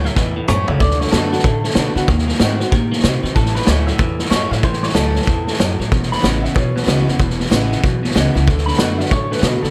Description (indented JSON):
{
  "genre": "rockabilly",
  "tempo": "188 BPM",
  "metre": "4/4",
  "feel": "swing 62% on 8ths",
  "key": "A major",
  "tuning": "A4 = 440 Hz",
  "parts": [
    { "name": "electric guitar through a small old amp", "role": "melody", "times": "0.0-9.7 s", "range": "E4 to B5", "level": "-26 LUFS", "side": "equal", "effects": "analog delay" },
    { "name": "picked steel-string acoustic guitar", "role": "accompaniment", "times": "0.0-9.7 s", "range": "E2 to F#4", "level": "-28 LUFS", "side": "equal", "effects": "none" },
    { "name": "clean electric guitar", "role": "riff", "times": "0.0-9.7 s", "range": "E2 to B#3", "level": "-25 LUFS", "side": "equal", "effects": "none" },
    { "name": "upright bass", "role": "bass", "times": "0.0-9.7 s", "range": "E1 to D#3", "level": "-22 LUFS", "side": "equal", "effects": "none" },
    { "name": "vintage drum kit", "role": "drums", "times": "0.1-9.7 s", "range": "hi-hat, kick drum, snare drum, toms", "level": "-20 LUFS", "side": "equal", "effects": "none" }
  ],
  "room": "light reverb",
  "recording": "none",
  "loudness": "-17 LUFS",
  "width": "mono",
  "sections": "0.0-9.7 A section",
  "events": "drum fill 0.2-0.8",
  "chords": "0.0 A; 0.8 D; 2.1 D#dim7; 3.4 A; 5.9 E; 8.5 D",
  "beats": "0.17 0.49 | 0.81 1.12 1.44 1.76 | 2.08 2.40 2.72 3.04 | 3.36 3.68 4.00 4.32 | 4.64 4.96 5.28 5.59 | 5.92 6.24 6.55 6.87 | 7.19 7.51 7.83 8.15 | 8.47 8.79 9.11 9.43"
}